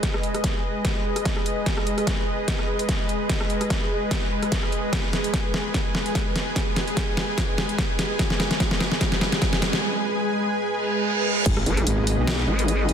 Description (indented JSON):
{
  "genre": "heavy wobble dubstep",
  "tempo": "147 BPM",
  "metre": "4/4",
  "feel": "swing 54% on 16ths, half-time",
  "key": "G# minor",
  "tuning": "A4 = 439 Hz",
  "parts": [
    { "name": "supersaw pad", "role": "sustained chords", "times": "0.0-12.9 s", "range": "G#3 to G#5", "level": "-26 LUFS", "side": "equal", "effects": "sidechain pumping" },
    { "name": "dubstep drum kit", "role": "drums", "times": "0.0-12.9 s", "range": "crash cymbal, hi-hat, rim click, snare drum", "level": "-26 LUFS", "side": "equal", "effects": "overdrive" },
    { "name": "electronic kick drum", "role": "drums", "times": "0.0-11.5 s", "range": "none", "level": "-27 LUFS", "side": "equal", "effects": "overdrive" },
    { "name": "riser, reverse cymbal and impact", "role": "sound effects", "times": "7.6-12.9 s", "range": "none", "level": "-31 LUFS", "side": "right 2 dB", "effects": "none" },
    { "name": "metallic wobble bass", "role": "bass", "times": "11.5-12.5 s", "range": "G#1 to B1", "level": "-23 LUFS", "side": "equal", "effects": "chorus, overdrive" },
    { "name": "vowel-sweep wobble bass", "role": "bass", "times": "11.7-12.9 s", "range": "G#1", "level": "-22 LUFS", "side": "equal", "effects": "chorus, overdrive" }
  ],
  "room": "moderate lush hall reverb, RT60 1.8 s",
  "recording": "dense, heavily limited modern master",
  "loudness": "-21 LUFS",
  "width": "side -8 dB against mid",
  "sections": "0.0-11.5 A section; 11.5-12.9 B section",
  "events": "build-up 0.0-11.5; drum fill 0.0-9.8; reverse cymbal 10.8-11.5; drop 11.5-12.9; impact 11.5-12.9",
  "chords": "0.0 G#m"
}